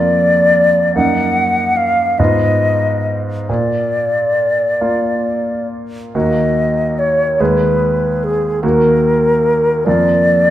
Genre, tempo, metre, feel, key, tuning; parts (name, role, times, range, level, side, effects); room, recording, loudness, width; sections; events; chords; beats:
classical, romantic duo for flute and grand piano; 44-50 BPM (dotted quarters); 6/8; rubato; Eb minor; A4 = 441 Hz
concert flute; melody; 0.0-10.5 s; Ab4 to Gb5; -14 LUFS; left 1 dB
bright grand piano; accompaniment; 0.0-10.5 s; Eb2 to Ab4; -16 LUFS; right 2 dB
moderate recital hall reverb, RT60 1.6 s; -12 LUFS; side -12 dB against mid
0.0-10.5 A section
0.0 Bb/F; 0.9 Ebm/Gb; 2.2 Fm7b5/Ab; 3.5 Bb; 6.1 Ebm; 7.4 Abm/Eb; 8.6 Ebm; 9.9 Bb/F
| 0.94 2.18 | 3.48 4.80 | 6.15 7.39 | 8.63 9.86